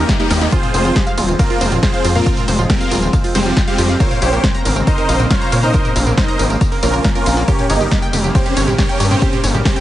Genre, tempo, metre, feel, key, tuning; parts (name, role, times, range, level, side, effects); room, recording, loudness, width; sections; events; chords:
uplifting trance; 138 BPM; 4/4; straight; F minor; A4 = 441 Hz
supersaw chords; melody; 0.0-9.8 s; G3 to G5; -19 LUFS; equal; phaser, cassette tape, sidechain pumping, dub echo
lush unison pad; sustained chords; 0.0-9.8 s; Db3 to C4; -24 LUFS; equal; chorus, sidechain pumping
analog pluck; arpeggios; 0.0-9.8 s; Bb3 to Bb5; -23 LUFS; right 4 dB; chorus, sidechain pumping, dub echo
gritty driven synth bass; bass; 0.0-9.6 s; Eb1 to Bb2; -17 LUFS; equal; distortion, sidechain pumping
reverse cymbal; sound effects; 0.0-0.5 s; -25 LUFS; left 6 dB
electronic kick drum; drums; 0.1-9.7 s; -17 LUFS; equal
house drum kit; drums; 0.1-9.8 s; hi-hat, ride cymbal, snare drum, tambourine, toms; -21 LUFS; left 1 dB; sidechain pumping on hats, sidechain pumping on cymbals, sidechain pumping on perc, sidechain pumping on toms
little or no reverb; heavily compressed radio sound, nothing above 10.3 kHz; -12 LUFS; side -14 dB against mid
0.0-9.8 A section
reverse cymbal 0.0-0.5; drum fill 0.2-0.5
0.0 Eb; 0.5 Fm; 4.0 Bbmadd9; 7.5 Gdim